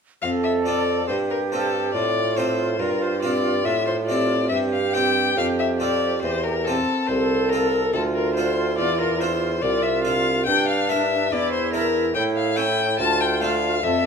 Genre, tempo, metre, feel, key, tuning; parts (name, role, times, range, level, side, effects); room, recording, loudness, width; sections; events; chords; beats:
classical, baroque-style sonata movement with continuo; 70 BPM; 3/4; straight; F major, D minor from 10.5 s; A4 = 440 Hz
warm violin; melody; 0.2-14.1 s; A4 to A5; -23 LUFS; left 7 dB
silver concert flute; second line; 0.2-14.1 s; D4 to A4; -27 LUFS; right 8 dB
harpsichord; accompaniment; 0.2-14.1 s; C2 to Bb4; -27 LUFS; equal
mellow bassoon; bass; 0.2-14.1 s; C2 to A2; -25 LUFS; right 2 dB
moderate recital hall reverb, RT60 1.6 s; -19 LUFS; side -6 dB against mid
0.2-14.1 A section
0.2 F; 2.8 C/G; 5.4 F; 7.9 Dm; 10.5 Em7b5/G; 12.2 A; 13.0 Dm
| 0.23 1.08 1.94 | 2.80 3.66 4.52 | 5.37 6.23 7.09 | 7.94 8.79 9.63 | 10.47 11.32 12.16 | 12.99 13.83